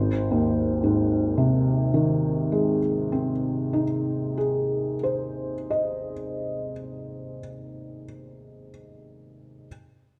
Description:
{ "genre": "classical, romantic nocturne for solo piano", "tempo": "31 BPM (dotted quarters)", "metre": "12/8", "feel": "rubato", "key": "Ab major", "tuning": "A4 = 440 Hz", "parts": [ { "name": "felt-muted upright piano", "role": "solo", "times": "0.0-9.7 s", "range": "Ab1 to Eb5", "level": "-26 LUFS", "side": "equal", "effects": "none" } ], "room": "moderate recital hall reverb, RT60 1.5 s", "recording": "none", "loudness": "-25 LUFS", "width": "mono", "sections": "0.0-7.5 A section", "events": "none", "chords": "0.0 Ab", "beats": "1.75 3.68 5.61" }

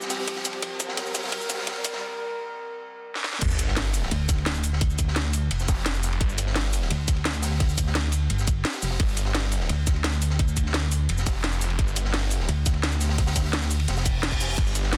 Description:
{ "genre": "dark technical drum and bass", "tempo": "172 BPM", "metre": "4/4", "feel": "straight", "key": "G minor", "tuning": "A4 = 440 Hz", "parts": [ { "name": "dark analog pad", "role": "sustained chords", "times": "0.0-3.4, 14.6-15.0 s", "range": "G3 to Bb4", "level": "-37 LUFS", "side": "equal", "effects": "chorus, vintage 12-bit sampler grit, sidechain pumping" }, { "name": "crunchy breakbeat drum kit", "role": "drums", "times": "0.0-15.0 s", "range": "hi-hat, ride cymbal, snare drum", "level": "-36 LUFS", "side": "equal", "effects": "high-pass filter on cymbals, high-pass filter on hats, high-pass filter on snare, high-pass filter on room" }, { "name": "drum and bass drum kit", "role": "drums", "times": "0.0-15.0 s", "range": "crash cymbal, hi-hat, shaker, snare drum", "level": "-31 LUFS", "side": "equal", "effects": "none" }, { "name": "riser, sub drop and reverse cymbal", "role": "sound effects", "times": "0.0-4.8, 14.1-14.6 s", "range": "none", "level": "-36 LUFS", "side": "equal", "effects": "none" }, { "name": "electronic kick drum", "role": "drums", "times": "0.3-14.6 s", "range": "none", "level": "-27 LUFS", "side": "equal", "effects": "high-pass filter on kick, high-pass filter on room" }, { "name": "snarling distorted saw bass", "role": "bass", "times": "3.4-6.9, 9.0-12.5, 14.6-15.0 s", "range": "F1 to G1", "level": "-29 LUFS", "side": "equal", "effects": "distortion, tube saturation" }, { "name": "pulsing pluck wobble bass", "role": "bass", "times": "4.1-14.6 s", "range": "F1 to D2", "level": "-27 LUFS", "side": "equal", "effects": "chorus, tube saturation" } ], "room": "little or no reverb", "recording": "dense, heavily limited modern master, high-pass filter", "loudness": "-25 LUFS", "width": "mono", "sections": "0.0-3.4 A section; 3.4-15.0 B section", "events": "build-up 0.0-3.4; drum fill 0.0-2.0, 3.2; riser 0.0-2.0; break 2.0-3.4; drop 3.4-15.0; impact 3.4-4.8; reverse cymbal 14.1-14.6", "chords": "0.0 G5", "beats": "0.28 | 0.63 0.97 1.32 1.67 | 2.02 2.37 2.72 3.07 | 3.42 3.77 4.11 4.46 | 4.81 5.16 5.51 5.86 | 6.21 6.56 6.91 7.25 | 7.60 7.95 8.30 8.65 | 9.00 9.35 9.70 10.04 | 10.39 10.74 11.09 11.44 | 11.79 12.14 12.49 12.84 | 13.18 13.53 13.88 14.23 | 14.58 14.93" }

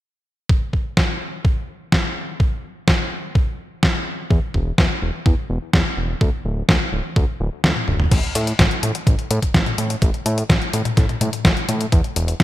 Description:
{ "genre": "italo disco", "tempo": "126 BPM", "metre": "4/4", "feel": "straight", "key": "unclear", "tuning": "A4 = 439 Hz", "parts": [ { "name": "electronic kick drum", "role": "drums", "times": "0.5-12.4 s", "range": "none", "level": "-18 LUFS", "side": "equal", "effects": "none" }, { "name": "detuned 8-bit digital drum machine", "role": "drums", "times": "1.0-12.4 s", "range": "crash cymbal, hi-hat, snare drum, toms", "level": "-20 LUFS", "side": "equal", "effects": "none" }, { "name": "fat analog bass", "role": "bass", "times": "4.3-12.4 s", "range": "D1 to A2", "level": "-22 LUFS", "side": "equal", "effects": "tube saturation" } ], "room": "light reverb", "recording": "bright 1980s-style digital production", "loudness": "-17 LUFS", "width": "side -15 dB against mid", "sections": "0.5-8.1 A section; 8.1-12.4 B section", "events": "kick drops out 7.6-8.1; drum fill 7.8-8.1", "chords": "none", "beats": "| 0.50 0.97 1.45 1.93 | 2.40 2.88 3.35 3.83 | 4.31 4.78 5.26 5.73 | 6.21 6.69 7.16 7.64 | 8.12 8.59 9.07 9.54 | 10.02 10.50 10.97 11.45 | 11.93 12.40" }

